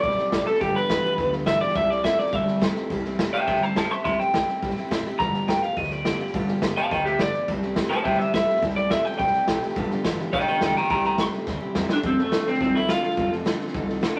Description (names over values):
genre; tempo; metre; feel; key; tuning
rockabilly; 210 BPM; 4/4; straight; C major; A4 = 440 Hz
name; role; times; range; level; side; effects
electric guitar through a small old amp; melody; 0.0-14.2 s; A3 to C6; -25 LUFS; equal; none
picked steel-string acoustic guitar; accompaniment; 0.0-14.2 s; G2 to A4; -34 LUFS; equal; none
electric guitar through a small old amp; riff; 0.0-2.9, 7.5-14.2 s; F2 to A3; -35 LUFS; equal; none
upright bass; bass; 0.0-14.2 s; F1 to E2; -33 LUFS; equal; none
raw garage drum kit; drums; 0.0-14.1 s; hi-hat, kick drum, snare drum; -30 LUFS; equal; none
room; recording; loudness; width
moderate studio reverb, RT60 0.7 s; vinyl crackle; -24 LUFS; mono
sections
0.0-2.9 A section; 2.9-12.0 A section; 12.0-14.2 B section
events
clean electric guitar solo 0.0-12.0; drum fill 11.5-12.0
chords
0.0 C; 0.6 G7; 1.8 C; 5.2 G7; 7.5 C; 9.8 G7; 10.9 C; 12.0 F